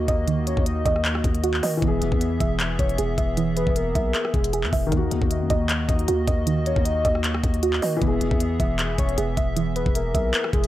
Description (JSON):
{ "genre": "hip hop, trap", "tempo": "155 BPM", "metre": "4/4", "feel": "half-time", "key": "Eb phrygian", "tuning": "A4 = 440 Hz", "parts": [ { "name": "dark grand piano", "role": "accompaniment", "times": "0.0-10.7 s", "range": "Eb3 to G#4", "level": "-31 LUFS", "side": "left 4 dB", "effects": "none" }, { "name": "hollow soft pad", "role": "sustained chords", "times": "0.0-10.7 s", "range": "Eb3 to E5", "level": "-31 LUFS", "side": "equal", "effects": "chorus" }, { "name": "soft round pluck", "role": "arpeggios", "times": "0.0-10.7 s", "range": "Eb3 to E5", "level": "-27 LUFS", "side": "right 5 dB", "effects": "chorus, digital delay" }, { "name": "growling 808-style bass", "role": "bass", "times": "0.0-10.7 s", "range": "E1 to Eb3", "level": "-26 LUFS", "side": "equal", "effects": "none" }, { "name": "trap drum kit", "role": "drums", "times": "0.1-10.7 s", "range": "handclaps, hi-hat, kick drum, rim click", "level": "-24 LUFS", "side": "equal", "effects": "none" }, { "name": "soft octave-layered synth lead", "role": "second line", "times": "0.5-10.7 s", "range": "G#4 to Eb5", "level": "-29 LUFS", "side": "left 2 dB", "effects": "chorus, digital delay" } ], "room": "digital ambience", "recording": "none", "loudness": "-20 LUFS", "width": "side -14 dB against mid", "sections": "0.0-10.7 A section", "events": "none", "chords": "0.0 Ebm; 1.8 E; 4.9 Ebm; 8.0 E" }